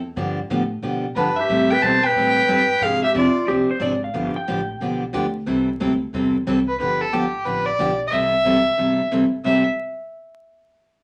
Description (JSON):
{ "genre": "country, western swing", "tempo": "181 BPM", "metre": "4/4", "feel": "swing 64% on 8ths", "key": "C major", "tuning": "A4 = 438 Hz", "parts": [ { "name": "upright bass", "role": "bass", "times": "0.0-9.6 s", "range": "G1 to B2", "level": "-34 LUFS", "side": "equal", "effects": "none" }, { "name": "picked steel-string acoustic guitar", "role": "accompaniment", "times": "0.2-9.6 s", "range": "C3 to A4", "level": "-24 LUFS", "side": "equal", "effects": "none" }, { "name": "warm fiddle", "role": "melody", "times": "1.2-3.5, 6.7-9.6 s", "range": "G4 to A5", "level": "-23 LUFS", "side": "equal", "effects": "none" }, { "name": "growling clarinet", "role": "second line", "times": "1.2-3.5 s", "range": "D4 to C5", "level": "-23 LUFS", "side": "equal", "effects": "none" }, { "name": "pedal steel guitar", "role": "second line", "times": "3.5-5.0 s", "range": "G4 to G5", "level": "-26 LUFS", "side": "equal", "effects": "none" } ], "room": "wet small room reverb, RT60 0.6 s", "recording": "vinyl crackle", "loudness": "-20 LUFS", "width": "mono", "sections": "0.0-6.8 A section; 6.8-9.4 B section; 9.4-10.8 C section", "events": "none", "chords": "0.2 G9; 1.5 Am9; 2.8 Fm6; 4.1 G7; 5.5 C6; 6.8 G7; 8.1 C6" }